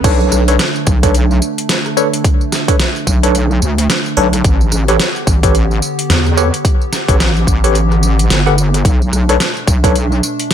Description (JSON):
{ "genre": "glitch hop", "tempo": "109 BPM", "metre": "4/4", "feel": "swing 59% on 16ths", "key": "B minor", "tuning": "A4 = 439 Hz", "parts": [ { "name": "warbly tape-like pad", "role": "sustained chords", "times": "0.0-10.5 s", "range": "B2 to G4", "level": "-22 LUFS", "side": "right 1 dB", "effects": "chorus, built-in reverb, sidechain pumping" }, { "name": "tine electric piano", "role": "stabs", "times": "0.0-9.9 s", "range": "D4 to F#5", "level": "-17 LUFS", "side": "equal", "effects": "medium stereo tremolo, sidechain pumping, ping-pong delay" }, { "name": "wobble bass", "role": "bass", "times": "0.0-10.2 s", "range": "G1 to E2", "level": "-13 LUFS", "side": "equal", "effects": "chorus, overdrive" }, { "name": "dubstep drum kit", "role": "drums", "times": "0.0-10.5 s", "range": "crash cymbal, hi-hat, rim click, snare drum, tambourine", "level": "-17 LUFS", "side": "equal", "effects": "overdrive" }, { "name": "electronic kick drum", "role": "drums", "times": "0.0-9.9 s", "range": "none", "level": "-13 LUFS", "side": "equal", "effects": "overdrive" } ], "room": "little or no reverb", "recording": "high-pass filter", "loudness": "-11 LUFS", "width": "side -9 dB against mid", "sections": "0.0-10.5 A section", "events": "drop 0.0-10.5", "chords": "0.0 Bm9; 4.4 A7sus2; 8.8 Bm7", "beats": "| 0.04 0.59 1.14 1.70 | 2.25 2.79 3.35 3.90 | 4.45 5.00 5.55 6.10 | 6.65 7.20 7.75 8.30 | 8.85 9.40 9.95 10.50" }